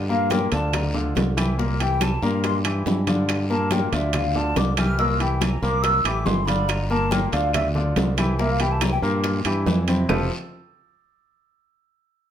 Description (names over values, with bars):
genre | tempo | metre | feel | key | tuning
Afro-Cuban jazz | 141 BPM | 4/4 | straight | F major | A4 = 440 Hz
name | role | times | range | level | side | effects
clear baby grand piano | accompaniment | 0.0-10.3 s | Bb2 to Bb4 | -26 LUFS | left 2 dB | none
modern bright fingered electric bass | bass | 0.0-10.3 s | F1 to G2 | -24 LUFS | equal | none
breathy mellow jazz flute | second line | 0.1-9.0 s | E5 to F6 | -26 LUFS | equal | none
bongos | percussion | 0.1-10.2 s | none | -32 LUFS | left 4 dB | none
congas | percussion | 0.1-10.2 s | none | -28 LUFS | equal | none
guiro | percussion | 0.3-10.2 s | none | -38 LUFS | left 3 dB | none
timbales | percussion | 0.3-10.2 s | none | -29 LUFS | right 8 dB | none
claves | percussion | 0.7-10.2 s | none | -36 LUFS | equal | none
room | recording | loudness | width
moderate studio reverb, RT60 0.8 s | none | -19 LUFS | side -10 dB against mid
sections
0.0-10.1 A section; 10.1-11.8 B section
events
flute solo 0.0-10.1; drum fill 3.1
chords
0.0 C7; 6.7 Gm7; 8.4 C7; 10.1 Fmaj9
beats
0.31 0.74 1.16 | 1.59 2.01 2.44 2.86 | 3.29 3.71 4.14 4.57 | 4.99 5.42 5.84 6.27 | 6.69 7.12 7.54 7.97 | 8.39 8.82 9.24 9.67 | 10.10